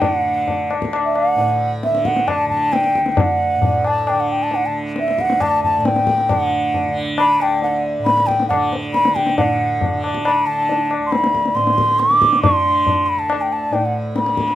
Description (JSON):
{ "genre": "indian classical, Hindustani", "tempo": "136 BPM", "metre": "7/4", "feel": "straight", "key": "D raga khamaj", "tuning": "A4 = 440 Hz", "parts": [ { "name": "mellow bansuri", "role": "melody", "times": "0.0-14.6 s", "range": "E5 to D6", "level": "-16 LUFS", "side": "equal", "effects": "none" }, { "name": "tanpura", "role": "drone", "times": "0.0-14.6 s", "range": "D2 to D3", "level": "-24 LUFS", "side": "right 1 dB", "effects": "none" }, { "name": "tabla", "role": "percussion", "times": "0.0-14.6 s", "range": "none", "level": "-21 LUFS", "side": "left 3 dB", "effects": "none" } ], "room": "light reverb", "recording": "none", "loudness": "-15 LUFS", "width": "side -13 dB against mid", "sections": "0.0-9.4 A section; 9.4-14.6 B section", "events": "speeding up 0.0-14.6", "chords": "none" }